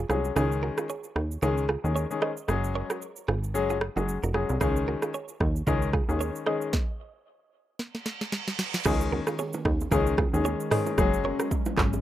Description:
afrobeats; 113 BPM; 4/4; swing 58% on 16ths; Db major; A4 = 440 Hz
direct-recorded clean electric guitar; riff; 0.0-11.9 s; Eb4 to Eb5; -35 LUFS; right 6 dB; spring reverb, ping-pong delay
plucky analog bass; bass; 0.0-12.0 s; F1 to Eb2; -28 LUFS; right 1 dB
clear concert grand piano; accompaniment; 0.1-11.5 s; Eb3 to Ab4; -29 LUFS; left 5 dB
afro-pop drum kit; drums; 0.1-12.0 s; crash cymbal, handclaps, hi-hat, kick drum, rim click, shaker, snare drum, toms; -28 LUFS; right 1 dB
reverse cymbal; sound effects; 8.0-8.9 s; -34 LUFS; right 7 dB
hollow soft pad; sustained chords; 8.9-12.0 s; Eb3 to Db4; -35 LUFS; right 1 dB; chorus
congas and bongos; percussion; 8.9-12.0 s; -36 LUFS; right 3 dB
little or no reverb; rough home demo mix; -25 LUFS; side -13 dB against mid
0.0-8.9 A section; 8.9-12.0 B section
stop 6.7-8.9; drum fill 7.8-8.9; reverse cymbal 8.0-8.9
0.4 Dbsus2; 2.5 Gbsus2; 4.6 Dbsus2; 6.7 N.C.; 8.9 Dbsus2; 11.0 Gbsus2
| 0.36 0.89 1.42 1.95 | 2.48 3.02 3.55 4.08 | 4.61 5.14 5.67 6.20 | 6.73 7.26 7.79 8.32 | 8.86 9.39 9.92 10.45 | 10.98 11.51

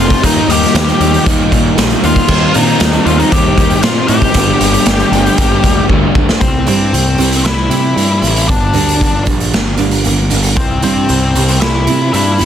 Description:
quiet-loud alternative rock; 116 BPM; 4/4; straight; G minor; A4 = 441 Hz
octave-fuzz lead guitar; melody; 0.0-12.5 s; C4 to G5; -16 LUFS; left 4 dB; distortion
crunchy overdriven guitar; riff; 0.0-6.4 s; G2 to Eb4; -14 LUFS; equal
fuzz picked electric bass; bass; 0.0-12.5 s; F1 to C3; -15 LUFS; equal; overdrive
raw garage drum kit; drums; 0.1-12.5 s; crash cymbal, hi-hat, kick drum, snare drum; -14 LUFS; right 1 dB
picked steel-string acoustic guitar; arpeggios; 6.7-12.5 s; C3 to E4; -18 LUFS; right 8 dB; digital delay
little or no reverb; dense, heavily limited modern master; -9 LUFS; side -9 dB against mid
0.0-6.4 A section; 6.4-12.5 B section
drum fill 5.9-6.4; half time 6.4-12.5
0.2 Eb; 2.3 Cm/Eb; 4.3 Gm; 6.4 C; 8.5 Gm; 10.6 C
| 0.23 0.75 1.26 1.77 | 2.29 2.80 3.32 3.83 | 4.35 4.86 5.38 5.89 | 6.41 6.93 7.45 7.97 | 8.49 9.01 9.53 10.05 | 10.57 11.10 11.62 12.14

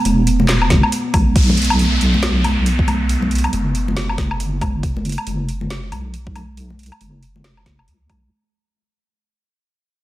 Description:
deep dubstep; 138 BPM; 4/4; swing 60% on 16ths, half-time; A4 = 440 Hz
dark analog pad; sustained chords; 0.0-8.4 s; B3; -25 LUFS; right 3 dB; chorus
deep soft wobble bass; bass; 0.1-8.3 s; E1 to C#2; -19 LUFS; equal; chorus
garage drum kit; drums; 0.1-8.2 s; handclaps, hi-hat, snare drum, woodblock; -22 LUFS; equal; overdrive, studio reverb
congas; percussion; 0.1-8.2 s; -23 LUFS; left 1 dB; dub echo
electronic kick drum; drums; 0.7-8.2 s; -17 LUFS; equal; overdrive, studio reverb
downlifter; sound effects; 1.4-4.8 s; -24 LUFS; equal
light reverb; dense, heavily limited modern master, vinyl crackle; -15 LUFS; side -15 dB against mid
0.0-1.4 A section; 1.4-8.3 B section
drop 0.0-1.4; fade-out 1.4-8.3
0.0 A5; 1.4 B5
0.05 0.49 0.92 | 1.36 1.79 2.23 2.66 | 3.10 3.53 3.96 4.40 | 4.83 5.27 5.70 6.14 | 6.57 7.01 7.44 7.88

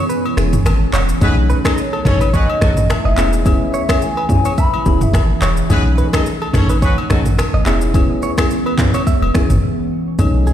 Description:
afrobeats; 107 BPM; 4/4; swing 55% on 16ths; E major; A4 = 440 Hz
deep dark ambient pad; sustained chords; 0.0-10.5 s; E3 to G#4; -23 LUFS; right 1 dB; chorus, built-in reverb
direct-recorded clean electric guitar; riff; 0.0-10.5 s; G#4 to E5; -26 LUFS; right 6 dB; warbly pitch drift, tape echo
deep house drum kit; drums; 0.1-10.5 s; finger snaps, handclaps, kick drum, rim click, shaker, toms; -17 LUFS; equal; overdrive
agogo bells and woodblock; percussion; 0.3-10.3 s; -28 LUFS; left 6 dB
soft electric-piano-like synth keys; accompaniment; 0.4-10.5 s; A3 to G#4; -22 LUFS; left 2 dB; chorus
punchy sub bass; bass; 0.4-10.5 s; E1 to B1; -16 LUFS; equal
clear horn section; second line; 1.2-7.2 s; C#4 to D#5; -25 LUFS; left 1 dB
hollow clarinet-like synth lead; melody; 1.8-5.4 s; C#5 to B5; -22 LUFS; left 2 dB; chorus, tape echo
digital ambience; played on a big sound system in a bare room, stone room reverb; -13 LUFS; side -10 dB against mid
0.0-10.2 A section
break 0.0-1.2, 9.6-10.2
0.0 E6; 1.2 B13; 3.2 E6; 5.7 B13; 7.7 E6
0.09 0.65 | 1.21 1.77 2.33 2.90 | 3.46 4.02 4.58 5.14 | 5.70 6.26 6.82 7.38 | 7.94 8.50 9.06 9.62 | 10.19

